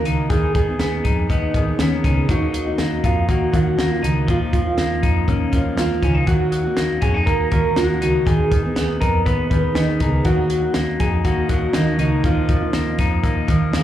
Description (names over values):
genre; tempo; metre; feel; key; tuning
jangly indie pop; 121 BPM; 4/4; straight; Eb minor; A4 = 440 Hz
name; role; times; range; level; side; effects
mellow electric guitar; melody; 0.0-13.7 s; Db4 to Cb5; -23 LUFS; equal; phaser, plate reverb, slapback echo, tape echo
fingerpicked steel-string acoustic guitar; accompaniment; 0.0-13.8 s; Eb3 to Ab4; -24 LUFS; right 3 dB; slapback echo
electric guitar through a small old amp; arpeggios; 0.0-13.8 s; Eb3 to Eb4; -25 LUFS; left 4 dB; slapback echo
vintage muted picked electric bass; bass; 0.0-13.8 s; Db2 to F2; -22 LUFS; equal; none
compact cocktail drum kit; drums; 0.1-13.8 s; hi-hat, kick drum, snare drum; -22 LUFS; equal; none
room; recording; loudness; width
light reverb; live gig heard through the venue's PA, club reverb; -16 LUFS; side -12 dB against mid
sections
0.0-13.8 A section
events
none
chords
0.3 Abm/Eb; 2.3 Ebm; 4.3 Bbsus4/Eb; 6.3 Ebm; 8.3 Abm/Eb; 10.3 Ebm; 12.2 Bbsus4/Eb